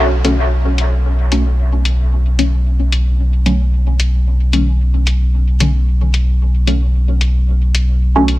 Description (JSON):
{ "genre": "dub techno", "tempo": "112 BPM", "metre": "4/4", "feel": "swing 54% on 16ths", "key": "B minor", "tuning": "A4 = 440 Hz", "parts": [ { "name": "warm sub bass", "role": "bass", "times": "0.0-8.4 s", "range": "B1", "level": "-13 LUFS", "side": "equal", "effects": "none" }, { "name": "filtered dub chord stab", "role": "stabs", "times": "0.2-8.3 s", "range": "D3 to C#4", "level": "-19 LUFS", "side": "equal", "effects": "phaser, dub echo" }, { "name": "electronic hi-hat", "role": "drums", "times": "0.2-8.4 s", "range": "none", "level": "-22 LUFS", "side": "left 3 dB", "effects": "studio reverb, dub echo" } ], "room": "little or no reverb", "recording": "lossy compression artefacts", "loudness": "-12 LUFS", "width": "side -17 dB against mid", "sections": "0.0-8.4 A section", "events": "none", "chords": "none", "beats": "0.51 1.05 1.59 | 2.12 2.66 3.19 3.73 | 4.26 4.80 5.34 5.87 | 6.41 6.94 7.48 8.01" }